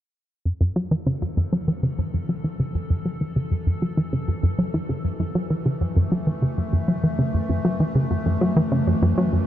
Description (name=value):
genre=ambient, sequencer-driven space music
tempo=98 BPM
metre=4/4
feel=straight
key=F# minor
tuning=A4 = 439 Hz
part: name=evolving wavetable pad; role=sustained chords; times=1.1-9.5 s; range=F#2 to A4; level=-30 LUFS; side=left 1 dB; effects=chorus, built-in reverb, shimmer reverb
part: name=plucky analog bass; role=riff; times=0.5-9.4 s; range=F#2 to F#3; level=-21 LUFS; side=equal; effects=tape echo
room=wet huge ambient reverb, RT60 8.0 s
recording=none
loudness=-21 LUFS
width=side -12 dB against mid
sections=0.5-9.5 A section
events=fade-in on ambient pad 0.5-9.5; filter sweep on analog synth bass 0.5-9.5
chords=0.5 F#m7